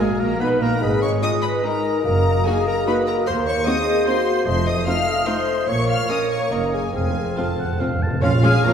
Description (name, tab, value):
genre	quick classical-period movement for symphony orchestra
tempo	146 BPM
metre	3/4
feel	rubato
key	Eb minor, Bb minor from 3.3 s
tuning	A4 = 440 Hz
part	rich studio violin section	melody	0.0-8.7 s	F5 to F6	-28 LUFS	left 4 dB	none
part	mellow hollow flute section	second line	0.0-8.7 s	Ab4 to F6	-26 LUFS	left 1 dB	none
part	warm clarinet	second line	0.0-8.7 s	F4 to F5	-27 LUFS	left 1 dB	none
part	warm oboe	second line	0.0-8.7 s	Ab4 to A5	-29 LUFS	right 1 dB	none
part	warm studio violin section	second line	0.0-8.7 s	Bb3 to F5	-33 LUFS	left 3 dB	none
part	dark bassoon	accompaniment	0.0-8.7 s	Ab3 to Db4	-27 LUFS	right 1 dB	none
part	warm studio viola section	accompaniment	0.0-8.7 s	F3 to Eb4	-28 LUFS	right 2 dB	none
part	dark French horn section	sustained chords	0.0-8.7 s	Db4 to C5	-26 LUFS	left 1 dB	none
part	rich studio double bass section	bass	0.0-8.7 s	F1 to Eb2	-26 LUFS	right 1 dB	none
part	warm symphonic cello section	bass	0.0-8.7 s	Eb2 to Bb3	-27 LUFS	right 1 dB	none
part	timpani	percussion	6.9-8.7 s	F2 to Bb2	-23 LUFS	right 1 dB	none
room	wet scoring stage reverb, RT60 1.9 s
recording	heard from further back in the room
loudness	-18 LUFS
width	side -8 dB against mid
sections	0.0-8.2 A section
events	timpani fill 6.9-8.2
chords	0.0 B; 0.8 Ab5; 2.0 Ebm/Gb; 3.3 Cm7b5/Eb; 4.5 F7; 5.7 Bbm; 6.5 Ebm/Gb; 6.9 F; 8.2 Bbm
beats	0.40 | 0.82 1.22 1.63 | 2.05 2.46 2.87 | 3.27 3.67 4.07 | 4.47 4.88 5.28 | 5.69 6.10 6.52 | 6.94 7.38 7.80 | 8.23 8.64